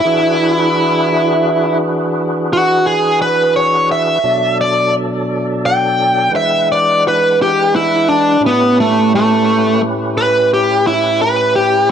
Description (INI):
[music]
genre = blues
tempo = 58 BPM (dotted quarters)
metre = 12/8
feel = straight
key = E mixolydian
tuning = A4 = 440 Hz
[part]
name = smooth overdriven lead guitar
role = melody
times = 0.0-11.9 s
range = A3 to G5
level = -12 LUFS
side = equal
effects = none
[part]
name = tonewheel organ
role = sustained chords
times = 0.0-11.9 s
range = A2 to F#5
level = -18 LUFS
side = equal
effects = slow rotary speaker, overdrive, chorus vibrato
[sound]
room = moderate plate reverb, RT60 2.5 s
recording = dark, warm production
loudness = -11 LUFS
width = side -8 dB against mid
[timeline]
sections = 0.0-11.9 A section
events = lead electric guitar solo 0.0-11.9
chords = 0.0 E9; 4.2 Bm7; 6.3 E9; 8.4 A9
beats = | 0.05 1.09 2.13 3.18 | 4.22 5.27 6.31 7.36 | 8.40 9.45 10.49 11.54